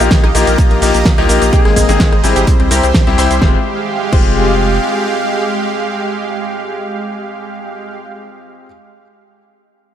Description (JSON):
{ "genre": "progressive house", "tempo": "127 BPM", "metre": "4/4", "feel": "straight", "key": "F minor", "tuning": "A4 = 440 Hz", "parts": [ { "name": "supersaw pad", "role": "sustained chords", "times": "0.0-8.0 s", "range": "Ab3 to C6", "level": "-19 LUFS", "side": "right 4 dB", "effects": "sidechain pumping" }, { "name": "analog pluck", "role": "arpeggios", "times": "0.0-8.7 s", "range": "Ab3 to C5", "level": "-21 LUFS", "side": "right 1 dB", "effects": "analog chorus, sidechain pumping, ping-pong delay" }, { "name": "bright concert grand piano", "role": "stabs", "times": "0.0-8.7 s", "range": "G3 to Ab4", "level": "-18 LUFS", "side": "left 7 dB", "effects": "sidechain pumping, ping-pong delay" }, { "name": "saturated sub bass", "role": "bass", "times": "0.0-4.8 s", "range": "F1 to C2", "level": "-16 LUFS", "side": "right 1 dB", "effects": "sidechain pumping" }, { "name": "pop drum kit", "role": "drums", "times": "0.0-4.3 s", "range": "cabasa, crash cymbal, hi-hat, rim click, snare drum", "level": "-19 LUFS", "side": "right 1 dB", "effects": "small room reverb" }, { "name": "electronic kick drum", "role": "drums", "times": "0.1-4.3 s", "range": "none", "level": "-12 LUFS", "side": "right 1 dB", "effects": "small room reverb" }, { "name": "jazz brush drum kit", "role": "drums", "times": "0.1-3.4 s", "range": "hi-hat, snare drum", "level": "-27 LUFS", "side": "equal", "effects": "none" } ], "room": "small room reverb", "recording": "none", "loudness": "-10 LUFS", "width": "side -10 dB against mid", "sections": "0.0-3.4 A section; 3.4-7.2 B section", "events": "drop 0.0-3.4", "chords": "0.0 Ebadd9/Bb; 1.5 Abadd9; 2.5 C; 3.4 Fmadd9", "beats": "0.11 0.58 1.05 | 1.53 2.00 2.47 2.94 | 3.42 3.89 4.36 4.83 | 5.31 5.78 6.25 6.72" }